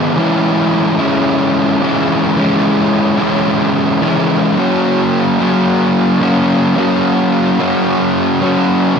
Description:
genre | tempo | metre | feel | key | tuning
rock | 109 BPM | 4/4 | straight | unclear | A4 = 440 Hz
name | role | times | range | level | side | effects
fuzz guitar | solo | 0.0-9.0 s | D#3 to F#4 | -11 LUFS | equal | distortion, slapback echo
room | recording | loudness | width
wet lush hall reverb, RT60 2.1 s | big arena sound | -11 LUFS | side -6 dB against mid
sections
0.0-9.0 A section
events
none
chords
0.2 C#m/E; 4.6 F#

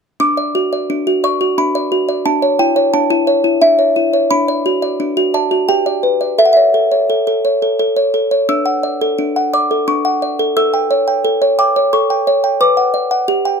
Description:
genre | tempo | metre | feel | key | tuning
classical, lullaby for music box | 87 BPM | 3/4 | straight | D major | A4 = 442 Hz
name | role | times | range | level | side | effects
music box | solo | 0.2-13.6 s | D4 to E6 | -12 LUFS | equal | none
room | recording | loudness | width
light reverb | none | -12 LUFS | side -6 dB against mid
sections
0.2-13.6 A section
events
none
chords
0.2 D; 2.3 A/D; 4.3 D; 5.7 G; 6.4 A; 8.5 D; 10.6 A7; 12.6 Bm

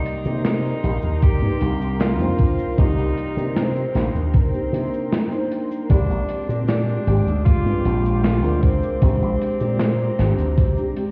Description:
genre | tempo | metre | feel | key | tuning
vaporwave | 77 BPM | 4/4 | straight | C minor | A4 = 440 Hz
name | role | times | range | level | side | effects
warm tenor saxophone | melody | 0.0-11.1 s | C4 to G4 | -29 LUFS | equal | tape echo
FM electric piano with soft pad layer | accompaniment | 0.0-11.1 s | Ab3 to D5 | -29 LUFS | equal | lush chorus, tape echo
lush unison pad | sustained chords | 0.0-11.1 s | Ab3 to D6 | -36 LUFS | equal | chorus
tight metal drum kit | drums | 0.1-11.1 s | cabasa, hi-hat, snare drum | -28 LUFS | equal | none
slap bass with an envelope filter | bass | 0.3-10.6 s | Ab1 to C3 | -24 LUFS | equal | none
electronic kick drum | drums | 1.2-10.7 s | none | -18 LUFS | equal | overdrive
room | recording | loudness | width
light reverb, studio ambience | heard muffled through a wall, cassette tape, stone room reverb, EQ | -20 LUFS | mono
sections
0.0-11.1 A section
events
none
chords
0.0 Cm7; 5.9 Bb13

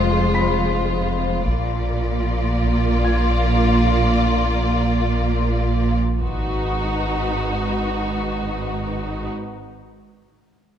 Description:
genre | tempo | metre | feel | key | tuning
cinematic, suspense film score | 78 BPM | 3/4 | straight | G# dorian | A4 = 441 Hz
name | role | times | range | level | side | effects
warm symphonic violin section | melody | 0.0-9.3 s | B4 to D5 | -30 LUFS | left 4 dB | none
rich symphonic violin section | second line | 0.0-9.3 s | F4 to F#4 | -25 LUFS | left 3 dB | none
warm symphonic viola section | accompaniment | 0.0-9.3 s | Ab3 to D#4 | -26 LUFS | right 1 dB | none
rich studio cello section | bass | 0.0-9.3 s | F2 to A#2 | -25 LUFS | right 3 dB | none
rich symphonic double bass section | bass | 0.0-9.3 s | F1 to A#1 | -26 LUFS | right 2 dB | none
punchy sub bass | drone | 0.0-9.3 s | F1 to A#1 | -24 LUFS | equal | none
dark baby grand piano | texture | 0.0-6.2 s | B5 to B6 | -32 LUFS | left 3 dB | none
solo taiko drums | drums | 1.5-3.0 s | none | -28 LUFS | equal | none
room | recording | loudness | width
moderate concert hall reverb, RT60 2.0 s | minimal, uncompressed stereo recording | -18 LUFS | side -9 dB against mid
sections
0.0-6.2 A section; 6.2-8.5 B section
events
none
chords
0.0 Fm; 1.5 A#; 6.2 G#m7

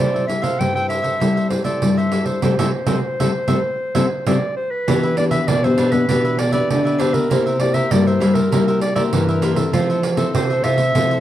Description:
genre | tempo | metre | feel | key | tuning
samba and choro | 98 BPM | 4/4 | straight | C major | A4 = 437 Hz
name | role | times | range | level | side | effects
warm clarinet | melody | 0.0-11.2 s | Bb4 to G5 | -22 LUFS | equal | none
cavaquinho | accompaniment | 0.0-11.2 s | D4 to E5 | -28 LUFS | right 1 dB | none
nylon-string guitar | accompaniment | 0.0-11.2 s | G2 to A4 | -23 LUFS | left 4 dB | none
nylon-string guitar | bass | 0.0-11.2 s | B2 to C4 | -20 LUFS | equal | none
pandeiro | percussion | 0.0-11.2 s | none | -22 LUFS | right 5 dB | none
room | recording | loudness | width
small room ambience | dry, close 1970s-style studio recording | -16 LUFS | side -12 dB against mid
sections
0.0-4.9 A section; 4.9-11.2 B section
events
band accent 2.4-4.9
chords
0.0 C6; 4.9 Em7; 7.3 C7; 9.7 Fmaj7

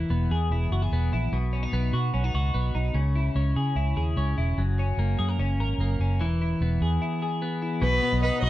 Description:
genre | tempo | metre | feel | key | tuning
indie pop | 148 BPM | 4/4 | straight | B major | A4 = 440 Hz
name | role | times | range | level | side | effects
twelve-string electric guitar | arpeggios | 0.0-8.5 s | F#2 to A#4 | -28 LUFS | left 2 dB | wide subtle chorus, digital delay
vintage muted fingered electric bass | bass | 0.0-8.5 s | E1 to C#3 | -25 LUFS | equal | none
dark violin | melody | 7.8-8.5 s | B4 to D#5 | -25 LUFS | equal | plate reverb
lush unison pad | sustained chords | 7.8-8.5 s | B4 to D#6 | -33 LUFS | equal | chorus
room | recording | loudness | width
light reverb | dark, warm production | -23 LUFS | side -15 dB against mid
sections
0.0-7.8 A section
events
break 7.0-7.8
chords
0.0 E; 1.3 B; 3.0 C#m; 4.6 F#; 6.2 E; 7.8 B

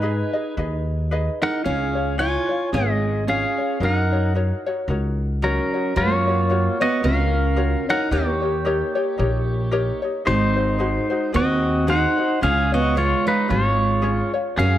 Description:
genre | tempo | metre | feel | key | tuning
Hawaiian | 112 BPM | 4/4 | swing 58% on 8ths | F# major | A4 = 440 Hz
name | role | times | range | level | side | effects
pedal steel guitar | melody | 0.0-14.8 s | C#4 to G#5 | -23 LUFS | left 1 dB | analog delay
fingerpicked steel-string acoustic guitar | second line | 0.0-14.8 s | F#3 to E#4 | -26 LUFS | right 4 dB | analog delay
ukulele | accompaniment | 0.0-14.8 s | C#4 to D#5 | -26 LUFS | left 3 dB | none
upright bass | bass | 0.0-14.8 s | G#1 to G#2 | -22 LUFS | equal | none
room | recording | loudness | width
moderate echo chamber reverb, RT60 1.3 s, studio reverb | none | -18 LUFS | side -12 dB against mid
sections
0.0-6.0 A section; 6.0-14.8 A section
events
none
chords
0.0 G#m; 1.6 C#; 3.8 F#6; 6.0 F#maj7; 8.1 D#7; 10.3 G#7; 12.4 C#

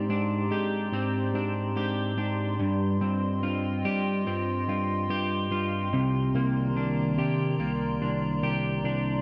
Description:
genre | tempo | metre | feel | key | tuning
dream pop | 72 BPM | 4/4 | straight | Eb major | A4 = 440 Hz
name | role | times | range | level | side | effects
warbly tape-like pad | sustained chords | 0.0-9.2 s | Eb3 to C6 | -35 LUFS | equal | chorus, built-in reverb
electric guitar at the edge of break-up | arpeggios | 0.0-9.2 s | G2 to G4 | -31 LUFS | equal | analog chorus, tape echo
barky tine electric piano | bass | 0.0-9.2 s | C2 to Ab3 | -32 LUFS | equal | none
room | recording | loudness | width
light reverb | echo-heavy mix | -28 LUFS | mono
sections
0.0-9.2 A section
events
none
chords
0.0 Abmaj9#11; 2.6 Eb69/G; 5.9 Cm9

